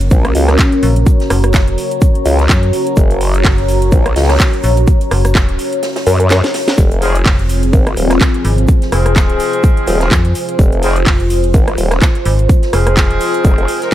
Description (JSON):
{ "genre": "bass house", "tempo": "126 BPM", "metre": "4/4", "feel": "swing 57% on 16ths", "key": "F phrygian", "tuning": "A4 = 440 Hz", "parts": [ { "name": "sweeping resonant pad", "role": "sustained chords", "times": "0.0-13.9 s", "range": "C4 to Bb4", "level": "-22 LUFS", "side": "left 1 dB", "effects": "chorus, sidechain pumping" }, { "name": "metallic FM bass", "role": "bass", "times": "0.0-13.2 s", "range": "F1 to Gb2", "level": "-13 LUFS", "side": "equal", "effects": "overdrive, sidechain pumping" }, { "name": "house drum kit", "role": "drums", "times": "0.0-13.9 s", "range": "handclaps, hi-hat, rim click, snare drum", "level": "-19 LUFS", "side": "right 1 dB", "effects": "none" }, { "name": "deep dark ambient pad", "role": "texture", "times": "0.0-13.9 s", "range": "F4 to Bb5", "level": "-19 LUFS", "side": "equal", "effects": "chorus, built-in reverb, sidechain pumping" }, { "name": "vowel-sweep wobble bass", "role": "bass", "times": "0.1-13.7 s", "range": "Eb1 to Gb2", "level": "-13 LUFS", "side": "equal", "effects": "chorus, overdrive, sidechain pumping" }, { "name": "electronic kick drum", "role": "drums", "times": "0.1-13.6 s", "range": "none", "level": "-11 LUFS", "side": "equal", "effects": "none" }, { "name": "swinging big-band drum kit", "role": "drums", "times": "0.1-13.9 s", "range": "hi-hat, shaker, snare drum", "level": "-29 LUFS", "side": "right 1 dB", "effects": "sidechain pumping on hats, high-pass filter on hats, high-pass filter on snare, sidechain pumping on perc, high-pass filter on perc, high-pass filter on room" }, { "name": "clear horn section", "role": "stabs", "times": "7.0-13.9 s", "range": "F3 to Bb4", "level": "-19 LUFS", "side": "left 3 dB", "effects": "sidechain pumping, tape echo" } ], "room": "little or no reverb", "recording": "none", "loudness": "-10 LUFS", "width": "side -13 dB against mid", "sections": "0.0-13.9 A section", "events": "kick drops out 5.8-6.8; drum fill 6.3-6.8", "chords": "0.0 Gb; 6.8 Fm" }